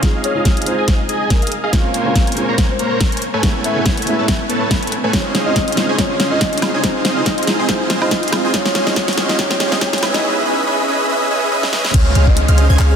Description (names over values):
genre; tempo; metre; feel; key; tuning
future bass; 141 BPM; 4/4; swing 55% on 16ths, half-time; Db major; A4 = 440 Hz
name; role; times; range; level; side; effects
felt-muted upright piano; accompaniment; 0.0-12.0 s; Ab3 to F4; -24 LUFS; right 2 dB; sidechain pumping, ping-pong delay
dense compressed supersaw; riff; 0.0-12.9 s; A3 to Bb5; -19 LUFS; right 1 dB; sidechain pumping, low-pass filter
electronic kick drum; drums; 0.0-12.3 s; none; -17 LUFS; equal; small room ambience
pop drum kit; drums; 0.0-12.9 s; crash cymbal, handclaps, hi-hat, snare drum, woodblock; -19 LUFS; left 1 dB; soft clipping on snare, small room ambience
riser and downlifter; sound effects; 0.3-13.0 s; none; -27 LUFS; equal; none
soft octave-layered synth lead; melody; 0.2-13.0 s; Ab4 to B5; -24 LUFS; left 1 dB; chorus, phaser, sidechain pumping, ping-pong delay
wide unison pluck; arpeggios; 11.9-12.9 s; F6 to Ab6; -27 LUFS; right 2 dB; phaser, sidechain pumping
warm 808-style bass; bass; 11.9-13.0 s; Db2; -12 LUFS; equal; sidechain pumping
room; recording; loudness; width
moderate lush hall reverb, RT60 2.2 s; dense, heavily limited modern master, high-pass filter; -14 LUFS; side -7 dB against mid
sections
0.0-11.9 A section; 11.9-13.0 B section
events
build-up 0.0-11.9; drum fill 0.0-10.2, 11.6-11.9; filter sweep 0.0-11.9; drop 11.9-13.0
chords
0.0 Fm7; 1.7 Bbm9; 3.2 Amaj9; 5.1 Dbmaj7; 6.8 Fm7; 8.5 Dbmaj9; 10.0 Dbm9; 11.9 Dbmaj7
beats
| 0.03 0.45 0.88 1.30 | 1.73 2.15 2.58 3.01 | 3.43 3.86 4.28 4.71 | 5.13 5.56 5.99 6.41 | 6.84 7.26 7.69 8.11 | 8.54 8.96 9.39 9.81 | 10.24 10.67 11.09 11.52 | 11.94 12.37 12.79